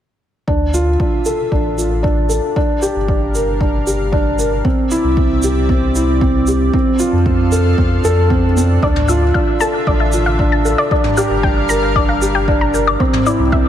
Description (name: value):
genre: piano and strings electronica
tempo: 115 BPM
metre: 4/4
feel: straight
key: D minor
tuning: A4 = 440 Hz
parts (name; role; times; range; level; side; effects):
- lush unison pad; sustained chords; 0.5-13.7 s; C3 to F5; -25 LUFS; equal; chorus
- felt-muted upright piano; riff; 0.5-13.7 s; C4 to Bb4; -16 LUFS; right 1 dB; digital delay
- warm sub bass; bass; 0.5-13.7 s; G1 to F2; -18 LUFS; equal; sidechain pumping
- electronic kick drum; drums; 0.5-13.6 s; none; -18 LUFS; equal; none
- shaker and toms; drums; 0.7-13.4 s; none; -24 LUFS; left 1 dB; none
- analog pluck; arpeggios; 8.8-13.6 s; C5 to Bb5; -20 LUFS; left 4 dB; chorus, sidechain pumping, digital delay
room: light reverb, studio ambience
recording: none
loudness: -13 LUFS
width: side -10 dB against mid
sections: 0.5-13.7 A section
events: fade-in on analog synth pad 0.5-13.7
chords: 0.5 Dmadd9; 2.6 Gm7; 4.7 Cadd9; 6.7 F6; 8.8 Dmadd9; 10.9 Gm7; 13.0 Cadd9